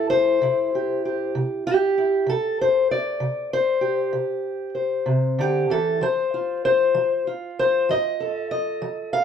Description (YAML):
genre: acoustic country blues, solo or duo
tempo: 64 BPM (dotted quarters)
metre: 12/8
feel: straight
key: C major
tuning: A4 = 440 Hz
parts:
  - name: fingerpicked steel-string acoustic guitar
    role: solo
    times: 0.0-9.2 s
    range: C3 to F5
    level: -20 LUFS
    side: left 1 dB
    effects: none
room: moderate studio reverb, RT60 0.8 s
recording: band playing live in one room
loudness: -20 LUFS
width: side -7 dB against mid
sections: 0.0-9.2 A section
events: steel-string acoustic guitar solo 0.0-9.2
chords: 0.0 C; 6.0 F